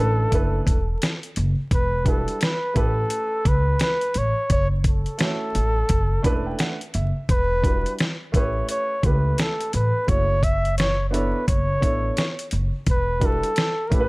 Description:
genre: hip hop, jazz-hop.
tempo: 86 BPM.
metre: 4/4.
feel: swing 61% on 16ths.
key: E dorian.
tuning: A4 = 441 Hz.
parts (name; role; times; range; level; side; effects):
mellow flugelhorn; melody; 0.0-14.1 s; A4 to E5; -25 LUFS; equal; none.
dark grand piano; accompaniment; 0.0-14.1 s; G3 to B5; -29 LUFS; right 2 dB; none.
upright bass; bass; 0.0-14.1 s; E1 to C#2; -23 LUFS; equal; none.
dusty soul sampler-style drum kit; drums; 0.3-14.1 s; hi-hat, kick drum, snare drum; -22 LUFS; equal; none.
room: studio reverb.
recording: vinyl crackle.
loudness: -20 LUFS.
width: side -25 dB against mid.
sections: 0.0-14.1 A section.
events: grand piano fill 5.9-7.3.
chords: 0.3 Bm11; 1.7 Em9; 2.8 A9; 4.5 F#m7; 5.9 Bm11; 7.3 Em9; 8.3 A9; 10.1 Bm11/F#; 12.9 Em9.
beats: 0.32 1.01 | 1.71 2.41 3.11 3.80 | 4.50 5.20 5.90 6.59 | 7.29 7.99 8.69 9.39 | 10.08 10.78 11.48 12.18 | 12.87 13.57.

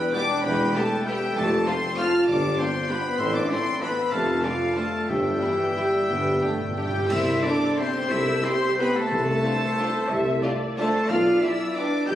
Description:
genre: classical, orchestral ballroom waltz.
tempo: 169-210 BPM.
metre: 3/4.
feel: rubato.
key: C major.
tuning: A4 = 439 Hz.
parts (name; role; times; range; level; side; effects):
warm symphonic violin section; melody; 0.0-12.2 s; F5 to G6; -30 LUFS; left 2 dB; none.
clear oboe; second line; 0.0-12.2 s; G4 to A5; -31 LUFS; equal; none.
mellow clarinet; second line; 0.0-12.2 s; F4 to G5; -32 LUFS; left 1 dB; none.
mellow French horn section; sustained chords; 0.0-12.2 s; F3 to G4; -27 LUFS; left 1 dB; none.
warm symphonic violin section; second line; 0.1-11.8 s; A3 to G4; -36 LUFS; left 2 dB; none.
dark symphonic viola section; accompaniment; 0.1-12.2 s; D3 to E5; -31 LUFS; right 1 dB; none.
dark symphonic double bass section; bass; 0.4-12.2 s; E1 to C2; -34 LUFS; right 1 dB; none.
mellow tuba; bass; 0.4-12.2 s; E1 to C2; -29 LUFS; right 1 dB; none.
rich symphonic cello section; bass; 0.5-12.2 s; E2 to G4; -32 LUFS; right 2 dB; none.
timpani; percussion; 2.3-2.7, 5.1-7.1, 9.1-9.6 s; G2 to C3; -36 LUFS; equal; none.
mellow small flute group; second line; 6.8-12.2 s; G4 to G5; -32 LUFS; equal; none.
clash cymbals and concert bass drum; percussion; 7.1-7.7 s; none; -38 LUFS; left 1 dB; none.
room: wet concert hall reverb, RT60 2.6 s.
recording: recorded on a phone in the room, club reverb, compression.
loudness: -21 LUFS.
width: side -12 dB against mid.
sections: 0.0-7.1 A section; 7.1-12.2 B section.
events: timpani fill 6.1-7.1; band accent 7.1-7.4.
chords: 0.0 Em; 1.4 F; 2.3 G; 3.2 Am; 4.1 Dm/F; 5.1 Em/G; 6.1 G; 7.1 C; 9.1 D7(no3)/C; 11.1 G7/B.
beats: 0.14 | 0.44 0.75 1.06 | 1.36 1.67 1.98 | 2.29 2.59 2.90 | 3.19 3.50 3.82 | 4.13 4.44 4.76 | 5.09 5.42 5.77 | 6.10 6.43 6.77 | 7.10 7.44 7.78 | 8.11 8.44 8.79 | 9.12 9.45 9.79 | 10.11 10.44 10.78 | 11.10 11.42 11.76 | 12.08.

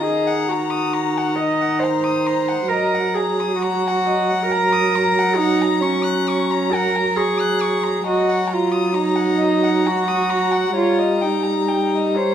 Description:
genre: classical, slow romantic movement for string quartet.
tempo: 67 BPM.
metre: 3/4.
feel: rubato.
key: unclear.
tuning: A4 = 439 Hz.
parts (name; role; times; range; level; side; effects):
rich violin; melody; 0.0-12.3 s; Bb5; -27 LUFS; left 13 dB; none.
rich violin; second line; 0.0-12.3 s; Db5 to Gb6; -24 LUFS; left 5 dB; none.
warm viola; accompaniment; 0.0-12.3 s; Eb3 to G3; -22 LUFS; right 1 dB; none.
warm cello; bass; 0.0-12.3 s; Db4 to Eb5; -20 LUFS; right 4 dB; none.
room: moderate recital hall reverb, RT60 1.6 s.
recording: none.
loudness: -16 LUFS.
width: side -9 dB against mid.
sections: 0.0-12.3 A section.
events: none.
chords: 0.0 Ebm; 2.7 Ebm/Gb; 5.4 Gb; 8.1 Ebm/Gb; 10.8 Eb7/G.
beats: | 0.03 0.92 1.79 | 2.68 3.58 4.48 | 5.36 6.27 7.18 | 8.08 8.97 9.87 | 10.76 11.68.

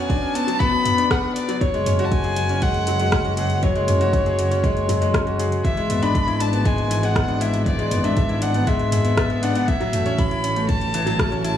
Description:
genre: piano and strings electronica.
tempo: 119 BPM.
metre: 4/4.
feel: straight.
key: F# minor.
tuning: A4 = 443 Hz.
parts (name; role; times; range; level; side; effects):
dark violin; melody; 0.0-11.6 s; C#5 to B5; -24 LUFS; equal; digital delay.
clear concert grand piano; riff; 0.0-11.6 s; E3 to B4; -23 LUFS; left 2 dB; digital delay.
deep house drum kit; drums; 0.1-11.5 s; hi-hat, rim click, toms; -27 LUFS; right 1 dB; none.
electronic kick drum; drums; 0.1-11.3 s; none; -23 LUFS; equal; none.
warm studio double bass section; bass; 1.6-11.6 s; F#1 to A1; -23 LUFS; equal; sidechain pumping.
room: moderate lush hall reverb, RT60 1.6 s, small room ambience.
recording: studio reverb.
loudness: -18 LUFS.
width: side -10 dB against mid.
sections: 0.0-1.6 A section; 1.6-11.6 B section.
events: build-up 0.0-1.6; drop 1.6-11.6.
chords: 0.0 Bmadd9; 1.6 F#sus2; 5.6 E7/G#; 9.7 A6.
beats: 0.10 0.60 1.11 | 1.61 2.12 2.62 3.12 | 3.63 4.13 4.64 5.14 | 5.65 6.15 6.65 7.16 | 7.66 8.17 8.67 9.18 | 9.68 10.18 10.69 11.19.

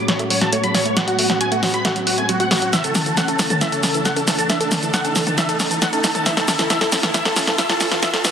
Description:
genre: uplifting trance.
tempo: 136 BPM.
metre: 4/4.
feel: straight.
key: unclear.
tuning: A4 = 444 Hz.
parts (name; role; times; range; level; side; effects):
big supersaw lead; melody; 0.0-8.3 s; F#4 to B5; -21 LUFS; equal; phaser, low-pass filter, tape echo.
analog string pad; sustained chords; 0.0-8.3 s; A2 to A4; -28 LUFS; equal; ensemble chorus.
analog pluck; arpeggios; 0.0-8.3 s; E3 to A4; -26 LUFS; right 2 dB; chorus, tape echo.
riser and noise sweep; sound effects; 0.0-8.3 s; none; -28 LUFS; right 1 dB; none.
punchy analog drum machine; drums; 0.1-8.3 s; hi-hat, shaker, snare drum, toms; -19 LUFS; equal; none.
room: moderate huge ambient reverb, RT60 4.2 s.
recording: dense, heavily limited modern master, high-pass filter.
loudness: -16 LUFS.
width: side -7 dB against mid.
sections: 0.0-8.3 A section.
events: build-up 0.0-8.3; drum fill 0.0-8.3; riser 0.0-8.3; filter sweep on synth arpeggio sound 0.0-8.3; noise sweep 8.0.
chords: 0.0 F#madd9; 2.7 A.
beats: 0.08 0.53 | 0.97 1.41 1.85 2.29 | 2.73 3.17 3.61 4.05 | 4.50 4.94 5.38 5.82 | 6.26 6.70 7.14 7.58 | 8.03.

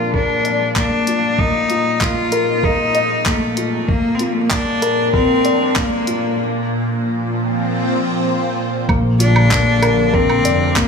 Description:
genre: piano and strings electronica.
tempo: 96 BPM.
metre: 4/4.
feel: straight.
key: Bb major.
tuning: A4 = 439 Hz.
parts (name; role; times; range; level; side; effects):
bright cello; melody; 0.0-10.9 s; A3 to F4; -19 LUFS; equal; low-pass filter, shimmer reverb.
lush unison pad; sustained chords; 0.0-10.9 s; Bb2 to D5; -22 LUFS; right 1 dB; chorus, phaser, sidechain pumping, shimmer reverb.
felt-muted upright piano; riff; 0.0-10.9 s; Bb3 to Eb5; -20 LUFS; left 3 dB; shimmer reverb.
electronic kick drum; drums; 0.1-10.9 s; none; -20 LUFS; equal; none.
deep house drum kit; drums; 0.5-10.9 s; handclaps, hi-hat, woodblock; -22 LUFS; right 1 dB; high-pass filter on hats, high-pass filter on snare, high-pass filter on perc.
clear studio double bass section; bass; 8.9-10.9 s; F1 to Bb1; -16 LUFS; equal; sidechain pumping.
room: moderate echo chamber reverb, RT60 2.1 s.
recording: small room reverb.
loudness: -14 LUFS.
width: side -5 dB against mid.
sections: 0.0-8.9 A section; 8.9-10.9 B section.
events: build-up 0.0-8.9; filter sweep on cello 0.0-8.9; break 6.4-8.9; drop 8.9-10.9.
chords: 0.0 Bb; 1.4 Ebsus2; 3.9 Bb; 6.4 Fsus4; 8.9 Bb.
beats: 0.14 0.77 | 1.39 2.02 2.64 3.27 | 3.89 4.52 5.14 5.77 | 6.39 7.02 7.64 8.27 | 8.89 9.52 10.14 10.77.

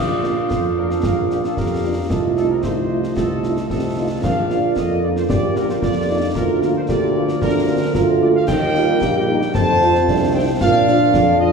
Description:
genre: military-style march for wind band.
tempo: 113 BPM.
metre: 2/4.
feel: straight.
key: Bb major.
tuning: A4 = 439 Hz.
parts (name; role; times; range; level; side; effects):
dark trumpet section; melody; 0.0-11.5 s; G4 to A5; -23 LUFS; equal; none.
dark woodwind section; second line; 0.0-11.5 s; F4 to F5; -28 LUFS; left 1 dB; none.
warm euphonium; second line; 0.0-11.5 s; C4 to G4; -22 LUFS; right 5 dB; none.
dark trombone section; sustained chords; 0.0-11.5 s; F3 to D4; -25 LUFS; equal; none.
warm tuba; bass; 0.0-11.5 s; Bb1 to Bb2; -22 LUFS; equal; none.
mellow French horn section; accompaniment; 0.2-11.5 s; F3 to G4; -26 LUFS; left 1 dB; none.
concert snare drum, concert bass drum and clash cymbals; drums; 0.2-11.3 s; none; -24 LUFS; left 1 dB; none.
room: wet scoring stage reverb, RT60 1.9 s.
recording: heard from further back in the room.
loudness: -15 LUFS.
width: side -5 dB against mid.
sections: 0.0-11.5 A section.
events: none.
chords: 0.0 Bb; 2.1 F7/C; 4.2 Bb; 6.4 Bb/D; 8.5 Eb; 9.5 F; 10.6 Bb.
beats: 0.50 | 1.03 1.57 | 2.10 2.63 | 3.16 3.69 | 4.22 4.76 | 5.29 5.82 | 6.35 6.88 | 7.42 7.95 | 8.48 9.01 | 9.54 10.07 | 10.61 11.14.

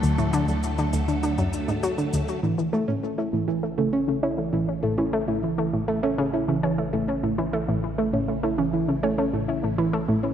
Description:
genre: ambient, sequencer-driven space music.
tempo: 100 BPM.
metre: 4/4.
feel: straight.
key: unclear.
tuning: A4 = 441 Hz.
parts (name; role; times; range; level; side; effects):
phased string machine; sustained chords; 0.0-10.3 s; C#3 to A4; -32 LUFS; left 1 dB; ensemble chorus, phaser.
analog pluck; riff; 0.0-10.2 s; D2 to C#4; -26 LUFS; equal; chorus, cassette tape, ping-pong delay.
fat analog bass; bass; 0.0-10.3 s; A1 to D2; -35 LUFS; equal; none.
electronic cabasa and toms; percussion; 0.0-2.4 s; none; -36 LUFS; left 5 dB; ping-pong delay.
soft round pluck; arpeggios; 2.4-10.3 s; E3 to E4; -25 LUFS; right 2 dB; chorus, auto-pan, cassette tape, ping-pong delay.
room: moderate plate reverb, RT60 2.5 s.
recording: echo-heavy mix.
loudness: -22 LUFS.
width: side -9 dB against mid.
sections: 0.0-2.4 A section; 2.4-10.3 B section.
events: none.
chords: 0.0 D; 2.4 A.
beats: | 0.03 0.63 1.23 1.83 | 2.43 3.03 3.63 4.23 | 4.83 5.43 6.03 6.63 | 7.23 7.83 8.43 9.03 | 9.63 10.23.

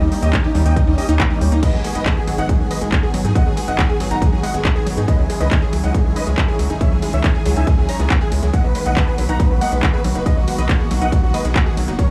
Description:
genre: uplifting trance.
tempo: 139 BPM.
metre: 4/4.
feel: straight.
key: unclear.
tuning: A4 = 442 Hz.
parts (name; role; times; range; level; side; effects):
big supersaw lead; melody; 0.0-12.1 s; D#4 to A#5; -28 LUFS; equal; sidechain pumping, tape echo.
warm baby grand piano; second line; 0.0-12.1 s; D#4 to A#5; -31 LUFS; equal; sidechain pumping, dub echo.
filtered supersaw swell; sustained chords; 0.0-12.1 s; D#3 to G4; -30 LUFS; equal; sidechain pumping.
unison pluck; arpeggios; 0.0-12.0 s; D#3 to G#4; -28 LUFS; equal; sidechain pumping, dub echo.
tight sequencer bass; bass; 0.0-12.0 s; F#1 to G#2; -22 LUFS; equal; sidechain pumping.
techno drum kit; drums; 0.1-12.1 s; crash cymbal, handclaps, hi-hat, ride cymbal; -28 LUFS; equal; none.
electronic kick drum; drums; 0.3-12.1 s; none; -20 LUFS; equal; none.
room: digital ambience.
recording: small room ambience.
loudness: -17 LUFS.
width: mono.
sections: 0.0-12.1 A section.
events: none.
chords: 0.0 D#7; 1.6 G#m7; 5.1 C#madd9; 8.5 Bmaj7.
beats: 0.33 0.77 1.20 | 1.63 2.06 2.49 2.92 | 3.35 3.79 4.22 4.65 | 5.08 5.51 5.95 6.38 | 6.81 7.24 7.67 8.10 | 8.54 8.97 9.40 9.83 | 10.26 10.69 11.12 11.56 | 11.99.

